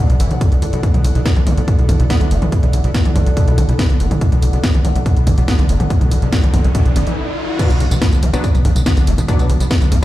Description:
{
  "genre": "driving peak-time techno",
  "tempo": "142 BPM",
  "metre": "4/4",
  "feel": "straight",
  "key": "B minor",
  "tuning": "A4 = 440 Hz",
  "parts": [
    { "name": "overdriven acid bass", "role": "riff", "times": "0.0-10.0 s", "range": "B2 to B3", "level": "-21 LUFS", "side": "equal", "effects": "ensemble chorus, sidechain pumping, tape echo" },
    { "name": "warbly tape-like pad", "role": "texture", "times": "0.0-7.2 s", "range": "E4 to F#5", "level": "-27 LUFS", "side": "equal", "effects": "chorus, built-in reverb, phaser, sidechain pumping" },
    { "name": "tight sequencer bass", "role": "bass", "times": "0.1-10.0 s", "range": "F#1 to C#2", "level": "-17 LUFS", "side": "equal", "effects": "sidechain pumping" },
    { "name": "techno drum kit", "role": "drums", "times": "0.1-10.0 s", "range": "crash cymbal, hi-hat, snare drum, tambourine, toms", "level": "-22 LUFS", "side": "equal", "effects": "none" },
    { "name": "electronic kick drum", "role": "drums", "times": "0.4-10.0 s", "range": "none", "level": "-15 LUFS", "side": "equal", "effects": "none" },
    { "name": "riser", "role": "sound effects", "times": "5.5-7.6 s", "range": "none", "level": "-26 LUFS", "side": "left 2 dB", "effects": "none" },
    { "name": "supersaw stab", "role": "stabs", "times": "7.6-9.5 s", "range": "F#3 to D4", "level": "-25 LUFS", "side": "left 2 dB", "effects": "sidechain pumping, tape echo" }
  ],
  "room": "little or no reverb",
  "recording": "played on a big sound system in a bare room, large studio reverb",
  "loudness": "-12 LUFS",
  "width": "side -15 dB against mid",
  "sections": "0.0-7.6 A section; 7.6-10.0 B section",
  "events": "fade-in on ambient pad 0.0-7.6; riser 5.5-7.6; stop 7.2-7.6; drop 7.6-10.0",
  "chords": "0.0 Bm",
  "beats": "0.41 | 0.83 1.26 1.68 2.10 | 2.52 2.95 3.37 3.79 | 4.21 4.64 5.06 5.48 | 5.90 6.33 6.75 7.17 | 7.59 8.02 8.44 8.86 | 9.28 9.71"
}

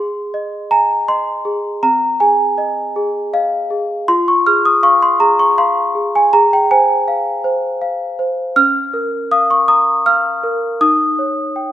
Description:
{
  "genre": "classical, lullaby for celesta",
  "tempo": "80 BPM",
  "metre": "3/4",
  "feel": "straight",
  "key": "Ab major",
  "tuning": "A4 = 437 Hz",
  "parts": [
    { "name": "celesta", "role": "solo", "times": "0.0-11.7 s", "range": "C4 to F6", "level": "-13 LUFS", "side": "equal", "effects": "none" }
  ],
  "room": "light reverb",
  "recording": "minimal, uncompressed stereo recording",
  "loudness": "-13 LUFS",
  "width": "side -12 dB against mid",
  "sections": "0.0-11.7 A section",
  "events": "none",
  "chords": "0.0 Ab; 1.8 Ab/C; 4.1 Fm; 6.3 Fm/Ab; 8.6 Bbm/Db; 10.8 Eb7",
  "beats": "0.34 1.08 | 1.83 2.58 3.33 | 4.08 4.83 5.58 | 6.32 7.07 7.82 | 8.56 9.31 10.06 | 10.81 11.56"
}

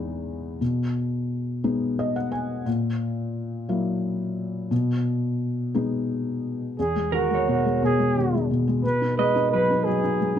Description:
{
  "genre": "acoustic folk-pop ballad",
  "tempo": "58 BPM (dotted quarters)",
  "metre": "6/8",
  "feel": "straight",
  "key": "B major",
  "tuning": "A4 = 439 Hz",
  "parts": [
    { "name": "felt-muted upright piano", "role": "accompaniment", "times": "0.0-10.4 s", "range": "E2 to G#5", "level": "-24 LUFS", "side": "left 2 dB", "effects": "none" },
    { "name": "breathy flugelhorn", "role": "melody", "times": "6.8-10.4 s", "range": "F#4 to B4", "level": "-25 LUFS", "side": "right 1 dB", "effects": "none" },
    { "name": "electric guitar through a small old amp", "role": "arpeggios", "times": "7.1-10.4 s", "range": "A#4 to D#5", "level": "-25 LUFS", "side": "right 7 dB", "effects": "harmonic tremolo" }
  ],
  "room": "moderate studio reverb, RT60 0.5 s",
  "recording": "dark, warm production",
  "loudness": "-22 LUFS",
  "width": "side -9 dB against mid",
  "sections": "0.0-6.8 A section; 6.8-10.4 B section",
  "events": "none",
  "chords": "0.0 Emaj7; 0.6 B6; 2.7 F#7/A#; 4.7 B6; 6.8 Emaj7; 8.8 B6",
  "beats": "| 0.61 1.65 | 2.67 3.69 | 4.71 5.74 | 6.78 7.81 | 8.84 9.86"
}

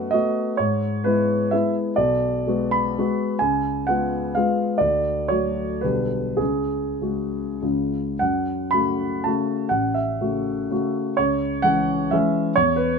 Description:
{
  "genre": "classical, romantic triple-time dance for piano with dotted rhythms",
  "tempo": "93-143 BPM",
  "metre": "3/4",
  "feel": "rubato",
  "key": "F# minor",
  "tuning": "A4 = 444 Hz",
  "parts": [
    { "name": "warm concert grand piano", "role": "solo", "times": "0.0-13.0 s", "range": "A1 to B5", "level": "-20 LUFS", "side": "equal", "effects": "none" }
  ],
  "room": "little or no reverb",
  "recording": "close, detailed microphones",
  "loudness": "-20 LUFS",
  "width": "side -5 dB against mid",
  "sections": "0.0-8.2 A section; 8.2-13.0 B section",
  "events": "none",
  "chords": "0.0 B7/F#; 0.6 E/G#; 2.0 G#m7b5/B; 3.4 C#7; 4.8 D; 5.8 G/B; 6.4 C#sus4; 7.6 C#; 8.2 F#m; 9.7 F#m/A; 11.2 C#m",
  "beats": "0.14 | 0.59 1.06 1.53 | 1.97 2.46 2.97 | 3.41 3.86 4.34 | 4.80 5.29 5.83 | 6.40 7.02 7.64 | 8.21 8.75 9.28 | 9.74 10.21 10.71 | 11.17 11.65 12.13 | 12.56"
}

